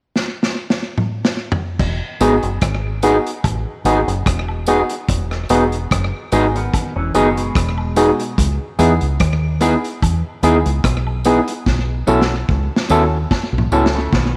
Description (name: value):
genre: lovers rock reggae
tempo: 73 BPM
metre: 4/4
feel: swing 55% on 16ths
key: E major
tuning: A4 = 440 Hz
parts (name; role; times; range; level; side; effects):
- vintage drum kit; drums; 0.2-14.3 s; crash cymbal, hi-hat, kick drum, rim click, snare drum, toms; -22 LUFS; equal; slapback echo
- deep dub fingered electric bass; bass; 1.8-14.4 s; E1 to E2; -22 LUFS; equal; none
- barky tine electric piano; accompaniment; 2.2-13.9 s; B3 to A4; -22 LUFS; equal; overdrive, slapback echo
- electric guitar through a small old amp; stabs; 2.2-13.8 s; B3 to A4; -23 LUFS; equal; warbly pitch drift
- tambourine and woodblock; percussion; 2.2-13.9 s; none; -35 LUFS; equal; none
- electric guitar with an envelope filter; arpeggios; 6.6-8.3, 13.9-14.3 s; B2 to C#4; -28 LUFS; equal; subtle chorus
room: light reverb, studio reverb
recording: none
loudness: -17 LUFS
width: mono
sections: 0.0-1.8 A section; 1.8-14.4 B section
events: drum fill 0.2-1.8, 11.7-14.4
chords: 0.0 N.C.; 1.8 Emaj7; 8.4 C#m7; 11.7 B7sus4